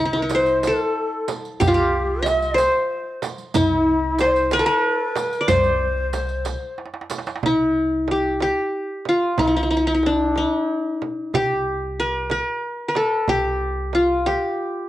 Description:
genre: Arabic maqam ensemble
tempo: 62 BPM (dotted quarters)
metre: 6/8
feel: straight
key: C maqam rast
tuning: A4 = 441 Hz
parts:
  - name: qanun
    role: melody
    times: 0.0-14.9 s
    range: D4 to E5-50c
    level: -19 LUFS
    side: left 1 dB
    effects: cassette tape, plate reverb
  - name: breathy bright low ney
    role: second line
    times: 0.0-6.8 s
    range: E4-48c to Eb5+48c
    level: -25 LUFS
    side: left 1 dB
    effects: cassette tape, plate reverb
  - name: upright bass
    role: bass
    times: 0.0-14.3 s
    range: C2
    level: -28 LUFS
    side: right 1 dB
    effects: none
  - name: darbuka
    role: percussion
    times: 0.3-7.4 s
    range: none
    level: -27 LUFS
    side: right 2 dB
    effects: none
  - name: frame drum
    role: percussion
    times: 0.3-14.4 s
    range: none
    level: -29 LUFS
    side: right 7 dB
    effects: none
  - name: riq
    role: percussion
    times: 0.3-7.3 s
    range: none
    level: -34 LUFS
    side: right 5 dB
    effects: none
room: wet studio ambience, RT60 0.5 s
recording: home recording on cassette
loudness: -18 LUFS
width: side -14 dB against mid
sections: 0.0-7.4 A section; 7.4-14.9 B section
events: drum fill 6.8-7.4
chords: none

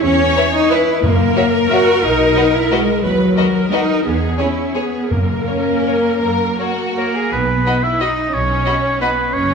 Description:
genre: classical, orchestral ballroom waltz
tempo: 151-193 BPM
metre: 3/4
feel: rubato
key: B major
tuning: A4 = 440 Hz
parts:
  - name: rich studio viola section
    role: accompaniment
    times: 0.0-9.5 s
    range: A#3 to C#5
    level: -20 LUFS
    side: equal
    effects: none
  - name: dark French horn section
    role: sustained chords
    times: 0.0-9.1 s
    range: F#3 to F#4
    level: -20 LUFS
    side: left 6 dB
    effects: none
  - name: clear studio double bass section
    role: bass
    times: 0.0-9.5 s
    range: F#1 to F#2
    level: -23 LUFS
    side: right 2 dB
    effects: none
  - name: warm studio cello section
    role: bass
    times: 0.0-9.5 s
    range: F#3 to F#4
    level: -20 LUFS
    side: right 3 dB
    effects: none
  - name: warm studio violin section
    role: melody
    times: 0.4-9.1 s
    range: C#5 to B5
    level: -28 LUFS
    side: left 5 dB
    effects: none
  - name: rich studio violin section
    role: second line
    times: 0.4-9.1 s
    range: C#4 to D#5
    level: -23 LUFS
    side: left 2 dB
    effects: none
  - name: timpani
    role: percussion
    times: 1.0-1.5, 5.1-5.6 s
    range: F#2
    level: -22 LUFS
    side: equal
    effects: none
  - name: clear oboe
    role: second line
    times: 7.0-9.5 s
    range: A#4 to E5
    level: -18 LUFS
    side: right 1 dB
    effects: none
room: wet concert hall reverb, RT60 1.9 s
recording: minimal, uncompressed stereo recording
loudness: -13 LUFS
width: side -5 dB against mid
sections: 0.0-7.3 A section; 7.3-9.5 B section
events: none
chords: 0.0 C#m7/E; 1.0 F#; 2.0 B; 3.0 B/D#; 4.0 C#m7/E; 5.1 F#; 7.3 B

